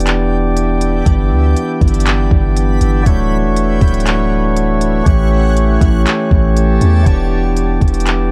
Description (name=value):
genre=hip hop, atmospheric cloud-rap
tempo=120 BPM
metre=4/4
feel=half-time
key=E dorian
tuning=A4 = 439 Hz
part: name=pipe organ, flutes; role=sustained chords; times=0.0-8.3 s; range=E3 to D5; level=-18 LUFS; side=equal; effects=sidechain pumping
part: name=long sustained 808-style bass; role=bass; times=0.0-8.3 s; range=D1 to E2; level=-16 LUFS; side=equal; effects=none
part: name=smooth R&B drum kit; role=drums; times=0.0-8.2 s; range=handclaps, hi-hat, kick drum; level=-16 LUFS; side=equal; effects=none
part: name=backwards swelling texture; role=texture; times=0.0-8.3 s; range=E4 to A5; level=-30 LUFS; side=equal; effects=built-in reverb
room=little or no reverb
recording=dark, warm production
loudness=-13 LUFS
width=mono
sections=0.0-8.3 A section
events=none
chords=0.0 Em7; 1.1 G6; 3.1 Dmaj9; 5.1 A7; 7.1 Em7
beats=0.06 0.56 | 1.06 1.56 2.06 2.56 | 3.06 3.56 4.06 4.56 | 5.06 5.56 6.06 6.56 | 7.06 7.56 8.06